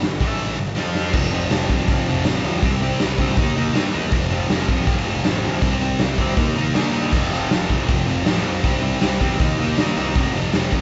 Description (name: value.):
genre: garage rock duo or trio.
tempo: 160 BPM.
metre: 4/4.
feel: straight.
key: unclear.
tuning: A4 = 440 Hz.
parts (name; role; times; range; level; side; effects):
thick fuzz guitar; riff; 0.0-10.8 s; F2 to F4; -24 LUFS; equal; distortion.
fuzz picked electric bass; bass; 0.0-10.8 s; F1 to G2; -29 LUFS; equal; overdrive.
raw garage drum kit; drums; 0.0-10.8 s; crash cymbal, hi-hat, kick drum, snare drum; -23 LUFS; equal; none.
tambourine; percussion; 0.4-10.6 s; none; barely audible; none; none.
room: moderate large studio reverb, RT60 1.1 s.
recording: band playing live in one room, nothing above 7.9 kHz.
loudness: -20 LUFS.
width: mono.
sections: 0.0-1.1 A section; 1.1-10.8 B section.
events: drum fill 0.8-1.1.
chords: 0.2 A5; 0.6 G5; 0.8 F5; 2.6 C5; 3.4 Eb; 4.1 F5; 5.6 C5; 6.4 Eb; 7.1 F5; 8.6 C; 9.4 Eb; 10.2 F5.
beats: 0.02 0.39 0.76 | 1.14 1.51 1.88 2.25 | 2.63 3.00 3.37 3.75 | 4.12 4.50 4.87 5.25 | 5.62 6.00 6.38 6.75 | 7.13 7.51 7.88 8.26 | 8.64 9.02 9.40 9.78 | 10.15 10.53.